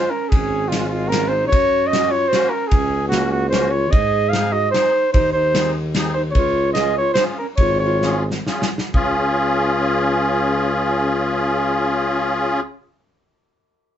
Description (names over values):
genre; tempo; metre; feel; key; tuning
alpine folk, alpine dance band; 123-151 BPM; 3/4; swing 54% on 8ths; Db major; A4 = 440 Hz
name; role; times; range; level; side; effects
warm flugelhorn; melody; 0.0-8.2 s; F4 to F5; -18 LUFS; right 1 dB; none
breathy bright bass recorder; second line; 0.0-8.2 s; Ab3 to Bb4; -26 LUFS; right 2 dB; none
musette accordion; accompaniment; 0.0-12.6 s; Ab3 to Ab4; -20 LUFS; left 1 dB; none
mellow tuba; bass; 0.3-12.6 s; Ab1 to Ab2; -23 LUFS; equal; none
natural country drum kit; drums; 0.3-9.1 s; kick drum, ride cymbal, snare drum; -21 LUFS; equal; none
room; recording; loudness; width
light reverb; band playing live in one room, nothing above 7.9 kHz; -16 LUFS; side -10 dB against mid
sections
0.0-8.9 A section; 8.9-11.8 B section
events
slowing down 6.3-8.9; drum fill 8.0-8.9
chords
0.0 Db; 1.5 Gb; 3.9 Ab; 6.3 Db